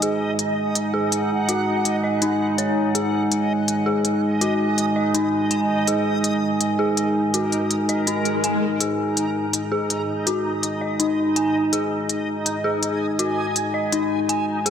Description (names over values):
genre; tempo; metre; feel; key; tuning
half-time drum and bass; 164 BPM; 4/4; swing 57% on 16ths, half-time; unclear; A4 = 441 Hz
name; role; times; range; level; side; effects
dark analog pad; sustained chords; 0.0-14.7 s; G#3 to G#5; -23 LUFS; right 1 dB; chorus
dark detuned synth bell; arpeggios; 0.0-14.7 s; D#4 to G#5; -25 LUFS; left 2 dB; chorus, low-pass filter, tape echo
electronic hi-hat; drums; 0.0-14.7 s; none; -23 LUFS; left 2 dB; none
backwards swelling texture; texture; 0.0-14.7 s; D#4 to G#5; -26 LUFS; right 1 dB; built-in reverb
swell; sound effects; 8.2-8.8 s; none; -27 LUFS; left 1 dB; none
room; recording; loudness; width
moderate lush hall reverb, RT60 1.9 s, digital ambience; none; -19 LUFS; side -8 dB against mid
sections
0.0-14.7 A section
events
swell 8.2-8.8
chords
0.0 G#5